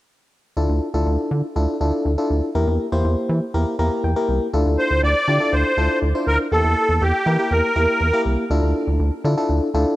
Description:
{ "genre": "synth-pop", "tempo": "121 BPM", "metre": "4/4", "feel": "straight", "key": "D minor", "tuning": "A4 = 439 Hz", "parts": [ { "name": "FM electric piano", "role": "accompaniment", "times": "0.6-10.0 s", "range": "Bb3 to Bb5", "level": "-22 LUFS", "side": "left 1 dB", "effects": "chorus" }, { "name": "rubbery square bass", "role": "bass", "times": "0.6-9.8 s", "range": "C2 to E3", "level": "-20 LUFS", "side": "equal", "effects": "none" }, { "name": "musette accordion", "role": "melody", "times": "4.8-8.2 s", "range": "G4 to D5", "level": "-19 LUFS", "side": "equal", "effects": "slapback echo" } ], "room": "light reverb, studio reverb", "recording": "none", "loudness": "-17 LUFS", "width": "side -16 dB against mid", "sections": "0.6-4.5 A section; 4.5-10.0 B section", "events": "FM electric piano fill 3.5-4.5", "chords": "0.6 Dmadd9; 2.5 Edim; 4.5 Dmadd9; 6.5 Edim; 8.5 Dmadd9", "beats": "| 0.57 1.06 1.56 2.05 | 2.55 3.05 3.54 4.04 | 4.53 5.03 5.53 6.02 | 6.52 7.01 7.51 8.01 | 8.50 9.00 9.49" }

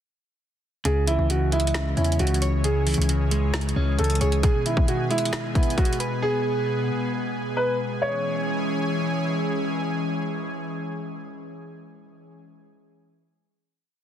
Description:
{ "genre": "hip hop, trap", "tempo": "134 BPM", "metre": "4/4", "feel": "half-time", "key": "C# minor", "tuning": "A4 = 441 Hz", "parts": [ { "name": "dark grand piano", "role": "melody", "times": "0.9-9.3 s", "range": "E4 to C#5", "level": "-27 LUFS", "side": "right 2 dB", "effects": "tape echo" }, { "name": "direct-recorded clean electric guitar", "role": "accompaniment", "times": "0.9-7.1 s", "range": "B2 to C#5", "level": "-28 LUFS", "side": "equal", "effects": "none" }, { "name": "airy breathy pad", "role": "sustained chords", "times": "0.9-12.4 s", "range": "B2 to G#4", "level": "-28 LUFS", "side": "left 1 dB", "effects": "chorus" }, { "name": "distorted 808-style bass", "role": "bass", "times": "0.9-4.4 s", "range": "C#2 to E2", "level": "-23 LUFS", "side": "equal", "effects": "distortion" }, { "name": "trap drum kit", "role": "drums", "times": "0.9-6.1 s", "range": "finger snaps, hi-hat, kick drum, snare drum", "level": "-25 LUFS", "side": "equal", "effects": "none" } ], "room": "light reverb, digital ambience", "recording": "dense, heavily limited modern master", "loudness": "-22 LUFS", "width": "side -10 dB against mid", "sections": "0.9-8.0 hook; 8.0-11.6 final chord", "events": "none", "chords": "0.9 C#m; 4.4 G#m; 8.0 C#m", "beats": "| 0.85 1.30 1.75 2.19 | 2.64 3.09 3.54 3.98 | 4.43 4.88 5.33 5.78 | 6.22 6.67 7.12 7.57 | 8.02 8.46 8.91 9.36 | 9.81 10.25 10.70 11.15" }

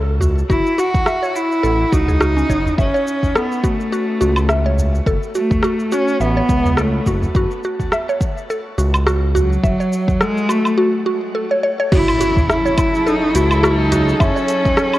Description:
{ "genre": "organic downtempo", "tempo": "105 BPM", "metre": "4/4", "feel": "swing 56% on 16ths", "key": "F# dorian", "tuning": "A4 = 441 Hz", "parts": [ { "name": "mallet-like synth pluck", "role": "arpeggios", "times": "0.0-15.0 s", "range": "C#4 to E5", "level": "-21 LUFS", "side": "equal", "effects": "chorus, phaser, ping-pong delay, shimmer reverb" }, { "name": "smooth gliding synth bass", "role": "bass", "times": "0.0-14.3 s", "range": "F#1 to C#2", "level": "-18 LUFS", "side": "equal", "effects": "tube saturation, sidechain pumping" }, { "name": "deep house drum kit", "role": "drums", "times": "0.2-15.0 s", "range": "crash cymbal, hi-hat, rim click, shaker, woodblock", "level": "-22 LUFS", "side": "equal", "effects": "none" }, { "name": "udu", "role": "percussion", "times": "0.2-14.8 s", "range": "none", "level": "-24 LUFS", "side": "equal", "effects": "none" }, { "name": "rich cello", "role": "melody", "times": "0.5-15.0 s", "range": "F#3 to F#4", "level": "-19 LUFS", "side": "equal", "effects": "tape echo, shimmer reverb" }, { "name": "electronic kick drum", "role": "drums", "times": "0.5-14.8 s", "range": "none", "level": "-19 LUFS", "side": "equal", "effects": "none" }, { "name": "dark studio string section", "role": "sustained chords", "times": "11.9-15.0 s", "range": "F#3 to A4", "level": "-25 LUFS", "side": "left 1 dB", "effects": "sidechain pumping, shimmer reverb" }, { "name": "impact", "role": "sound effects", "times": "11.9-14.2 s", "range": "none", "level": "-26 LUFS", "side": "equal", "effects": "none" } ], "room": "moderate concert hall reverb, RT60 2.1 s", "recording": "worn, warbling old tape, cassette tape, warbly pitch drift", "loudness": "-14 LUFS", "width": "side -15 dB against mid", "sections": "0.0-11.9 A section; 11.9-15.0 B section", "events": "impact 11.9-14.2", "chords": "0.0 A/F#; 2.8 F#m; 11.9 F#m7", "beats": "| 0.49 1.07 1.64 2.21 | 2.78 3.35 3.92 4.50 | 5.07 5.64 6.21 6.78 | 7.35 7.92 8.49 9.07 | 9.64 10.21 10.78 11.35 | 11.92 12.49 13.07 13.64 | 14.21 14.78" }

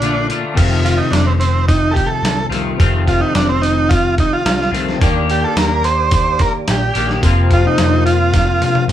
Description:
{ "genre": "psychedelic rock", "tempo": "108 BPM", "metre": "4/4", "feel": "straight", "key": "unclear", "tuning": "A4 = 439 Hz", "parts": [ { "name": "overdriven combo organ", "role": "melody", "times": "0.0-8.8 s", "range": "C4 to C5", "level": "-17 LUFS", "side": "right 2 dB", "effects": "none" }, { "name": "mellow tonewheel organ", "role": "sustained chords", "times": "0.0-0.6, 5.0-8.9 s", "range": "G4 to D6", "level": "-28 LUFS", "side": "right 4 dB", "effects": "chorus vibrato, slow rotary speaker" }, { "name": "clean electric guitar", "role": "riff", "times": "0.0-8.9 s", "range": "F2 to G4", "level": "-19 LUFS", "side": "left 4 dB", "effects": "rotary speaker" }, { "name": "overdriven picked electric bass", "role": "bass", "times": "0.0-8.9 s", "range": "F1 to F2", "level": "-18 LUFS", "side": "equal", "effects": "none" }, { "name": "dusty soul sampler-style drum kit", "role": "drums", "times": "0.0-8.9 s", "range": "crash cymbal, hi-hat, kick drum, snare drum, toms", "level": "-18 LUFS", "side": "equal", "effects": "overdrive" } ], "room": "wet studio reverb, RT60 0.5 s", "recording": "band playing live in one room", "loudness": "-12 LUFS", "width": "side -11 dB against mid", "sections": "0.6-8.9 A section", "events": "break 0.0-0.6; drum fill 8.3-8.9", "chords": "0.0 Bbmaj7; 0.6 F7; 5.0 Ebmaj7; 7.2 Fsus4", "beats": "0.01 | 0.57 1.12 1.68 2.23 | 2.79 3.34 3.90 4.45 | 5.01 5.56 6.12 6.67 | 7.22 7.78 8.33 8.88" }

